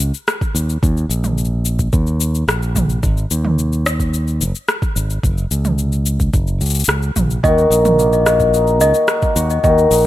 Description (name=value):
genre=folktronica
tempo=109 BPM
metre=4/4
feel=straight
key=Eb minor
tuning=A4 = 441 Hz
part: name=modern bright fingered electric bass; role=bass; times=0.0-10.1 s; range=Gb1 to Eb2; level=-17 LUFS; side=equal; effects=none
part: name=organic electronic drum kit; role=drums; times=0.0-10.0 s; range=cabasa, rim click, toms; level=-21 LUFS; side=equal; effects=overdrive
part: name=electronic kick drum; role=drums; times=0.4-9.7 s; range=none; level=-18 LUFS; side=equal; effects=overdrive
part: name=celesta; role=second line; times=7.4-10.1 s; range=Eb5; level=-16 LUFS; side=left 3 dB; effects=ping-pong delay
part: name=cimbalom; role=arpeggios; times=7.4-10.1 s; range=Eb3 to Gb4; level=-15 LUFS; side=right 1 dB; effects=tape echo
room=light reverb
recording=none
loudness=-14 LUFS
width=side -14 dB against mid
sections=0.0-10.1 A section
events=none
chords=0.0 Eb5; 3.0 Ab5; 5.2 Gb5; 7.4 Ebm